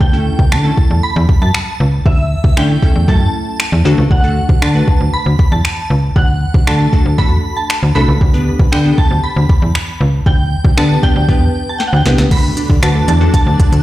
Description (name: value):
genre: dance-pop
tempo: 117 BPM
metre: 4/4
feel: straight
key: D major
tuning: A4 = 440 Hz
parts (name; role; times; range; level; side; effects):
- shimmering bell with halo; melody; 0.0-13.8 s; E5 to B5; -21 LUFS; right 1 dB; ensemble chorus, tremolo, tape echo
- slap-like FM bass; bass; 0.0-13.8 s; C2 to D3; -13 LUFS; equal; sidechain pumping
- smooth R&B drum kit; drums; 0.0-13.8 s; crash cymbal, finger snaps, hi-hat, kick drum, snare drum; -13 LUFS; equal; overdrive
- glassy wavetable pluck; accompaniment; 0.1-13.7 s; A3 to D5; -20 LUFS; left 1 dB; chorus, sidechain pumping
- string machine, violins; sustained chords; 12.3-13.8 s; A2 to F#4; -21 LUFS; equal; ensemble chorus, sidechain pumping
- glassy wavetable pluck; arpeggios; 12.3-13.8 s; F#3 to F#5; -25 LUFS; right 3 dB; chorus, sidechain pumping, tape echo
room: digital ambience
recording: played on a big sound system in a bare room, large studio reverb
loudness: -10 LUFS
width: side -15 dB against mid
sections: 0.0-12.3 A section; 12.3-13.8 B section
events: drum fill 11.8-12.3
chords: 0.0 A; 3.9 D; 8.2 G; 12.3 D